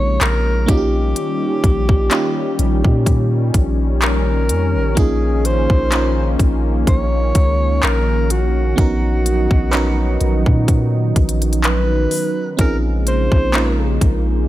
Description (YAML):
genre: contemporary R&B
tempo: 63 BPM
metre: 4/4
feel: swing 54% on 16ths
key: unclear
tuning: A4 = 440 Hz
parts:
  - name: dark alto saxophone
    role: melody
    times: 0.0-14.0 s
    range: Gb4 to Db5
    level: -23 LUFS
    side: equal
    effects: ping-pong delay
  - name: FM electric piano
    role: accompaniment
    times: 0.0-14.5 s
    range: Bb3 to B4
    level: -23 LUFS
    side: right 3 dB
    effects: chorus
  - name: warm analog pad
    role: sustained chords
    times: 0.0-14.5 s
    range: Db3 to D#4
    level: -24 LUFS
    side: equal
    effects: chorus, sidechain pumping
  - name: long sustained 808-style bass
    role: bass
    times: 0.0-14.5 s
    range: Bb1 to Bb2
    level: -18 LUFS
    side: equal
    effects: none
  - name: trap drum kit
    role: drums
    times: 0.2-14.3 s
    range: handclaps, hi-hat, kick drum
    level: -17 LUFS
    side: equal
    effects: none
room: digital ambience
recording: none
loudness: -14 LUFS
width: side -15 dB against mid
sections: 0.0-14.5 A section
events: none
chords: 0.0 Bbm11; 0.7 Eb7/Bb; 5.0 Db69/Bb; 8.8 Bmaj7/A#; 12.6 Bbm11